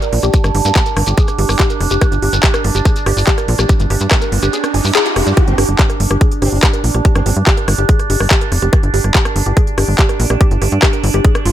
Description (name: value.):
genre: psychedelic trance.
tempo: 143 BPM.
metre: 4/4.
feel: straight.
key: G phrygian.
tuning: A4 = 440 Hz.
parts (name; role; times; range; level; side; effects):
overtone-sweeping drone; sustained chords; 0.0-11.5 s; D4; -22 LUFS; right 6 dB; chorus, built-in reverb, phaser, sidechain pumping.
woody wave-folded pluck; riff; 0.0-11.5 s; F4 to Ab5; -21 LUFS; moving between left 5 dB and right 4 dB; chorus, auto-pan, sidechain pumping, tape echo.
big-room dance drum kit; drums; 0.0-11.5 s; handclaps, hi-hat, rim click; -19 LUFS; equal; none.
shekere; percussion; 0.0-5.4 s; none; -25 LUFS; left 2 dB; none.
tight sequencer bass; bass; 0.1-11.5 s; F1 to G2; -15 LUFS; equal; none.
electronic kick drum; drums; 0.3-11.3 s; none; -13 LUFS; equal; none.
formant-sweep wobble bass; second line; 0.7-0.8, 5.5-7.3 s; Bb3 to C4; -30 LUFS; right 3 dB; none.
riser; sound effects; 3.8-5.4 s; none; -24 LUFS; right 1 dB; none.
room: little or no reverb.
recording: none.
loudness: -11 LUFS.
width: side -12 dB against mid.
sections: 0.0-5.4 A section; 5.4-11.5 B section.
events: riser 3.8-5.4; kick drops out 4.5-5.4; band accent 5.0; drop 5.4-11.5.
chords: 0.0 G5.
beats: | 0.34 0.76 1.18 1.59 | 2.02 2.43 2.85 3.27 | 3.69 4.11 4.53 4.95 | 5.37 5.79 6.21 6.63 | 7.05 7.47 7.89 8.31 | 8.73 9.15 9.57 9.99 | 10.41 10.83 11.24.